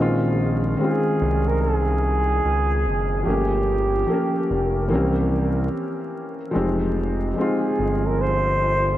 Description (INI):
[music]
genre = lo-fi hip hop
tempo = 73 BPM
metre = 4/4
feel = swing 66% on 16ths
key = F minor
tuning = A4 = 440 Hz
[part]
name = felt-muted upright piano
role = accompaniment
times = 0.0-9.0 s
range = Eb3 to D#5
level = -23 LUFS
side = left 1 dB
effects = cassette tape, low-pass filter
[part]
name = smooth gliding synth bass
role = bass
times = 0.0-9.0 s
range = F1 to Db2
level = -23 LUFS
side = equal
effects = none
[part]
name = breathy flugelhorn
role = melody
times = 0.8-9.0 s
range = G4 to C5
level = -24 LUFS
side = right 1 dB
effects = low-pass filter
[sound]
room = moderate cathedral reverb, RT60 5.5 s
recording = dreamy mix soaked in reverb, vinyl crackle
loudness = -19 LUFS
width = side -13 dB against mid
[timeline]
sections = 0.0-9.0 A section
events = none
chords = 0.0 Bbm11; 3.3 Gm7b5; 4.9 C7b9; 6.5 Fm9